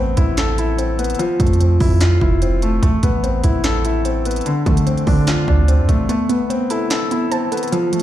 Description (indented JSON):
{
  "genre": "hip hop, trap",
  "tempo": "147 BPM",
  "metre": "4/4",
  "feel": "half-time",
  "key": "A minor",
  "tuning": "A4 = 440 Hz",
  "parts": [
    { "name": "felt-muted upright piano", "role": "accompaniment", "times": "0.0-8.0 s", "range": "D3 to A4", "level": "-19 LUFS", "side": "left 3 dB", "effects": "low-pass filter" },
    { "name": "hard-hitting 808-style bass", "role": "bass", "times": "0.0-6.1 s", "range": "F1 to D3", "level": "-17 LUFS", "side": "right 1 dB", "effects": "none" },
    { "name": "trap drum kit", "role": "drums", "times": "0.2-8.0 s", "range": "handclaps, hi-hat, kick drum, snare drum", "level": "-19 LUFS", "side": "right 1 dB", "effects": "none" },
    { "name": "glassy wavetable pluck", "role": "arpeggios", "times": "6.1-8.0 s", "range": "F3 to A5", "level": "-21 LUFS", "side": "right 4 dB", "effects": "chorus, low-pass filter, tape echo" }
  ],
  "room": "digital ambience",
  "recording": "played on a big sound system in a bare room, large studio reverb",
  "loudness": "-14 LUFS",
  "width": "side -12 dB against mid",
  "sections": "0.0-8.0 A section",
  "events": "break 6.1-8.0",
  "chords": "0.0 Amadd9; 1.2 Fmaj7; 2.8 Amadd9; 4.5 Dm7; 6.1 Amadd9"
}